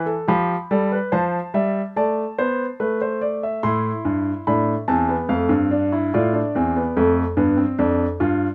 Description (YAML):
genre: classical, baroque-style 4-part fugue for grand piano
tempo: 72 BPM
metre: 4/4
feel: straight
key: A minor from 3.6 s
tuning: A4 = 440 Hz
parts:
  - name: warm baby grand piano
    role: solo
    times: 0.0-8.5 s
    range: E2 to C6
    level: -21 LUFS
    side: equal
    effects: none
room: light reverb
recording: close, detailed microphones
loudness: -21 LUFS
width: mono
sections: 0.0-3.6 A section; 3.6-8.5 B section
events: none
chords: 0.3 Fmaj9#11; 1.9 Am; 5.3 F; 7.0 Dm/F